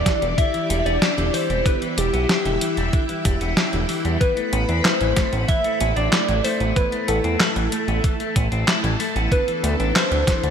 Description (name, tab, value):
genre	synthwave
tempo	94 BPM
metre	4/4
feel	straight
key	unclear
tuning	A4 = 440 Hz
part	soft octave-layered synth lead	melody	0.0-10.5 s	G4 to E5	-26 LUFS	left 1 dB	chorus, phaser, ping-pong delay
part	soft synth bell	second line	0.0-10.5 s	G4 to E5	-29 LUFS	right 1 dB	chorus, phaser, digital delay
part	string machine, full ensemble	sustained chords	0.0-10.5 s	A3 to B5	-28 LUFS	right 1 dB	ensemble chorus, sidechain pumping
part	fat analog bass	bass	0.0-10.5 s	E1 to E2	-23 LUFS	right 1 dB	none
part	clean electric guitar	arpeggios	0.1-10.5 s	D3 to E4	-27 LUFS	left 3 dB	wide subtle chorus, digital delay
part	detuned 8-bit digital drum machine	drums	0.1-10.5 s	handclaps, hi-hat, snare drum	-23 LUFS	equal	studio reverb, gated reverb
part	electronic kick drum	drums	0.1-10.4 s	none	-21 LUFS	equal	studio reverb
room	moderate plate reverb, RT60 2.5 s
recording	bright 1980s-style digital production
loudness	-18 LUFS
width	side -7 dB against mid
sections	0.0-10.5 A section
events	none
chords	0.0 Em7; 4.2 Amadd9; 9.3 Dsus2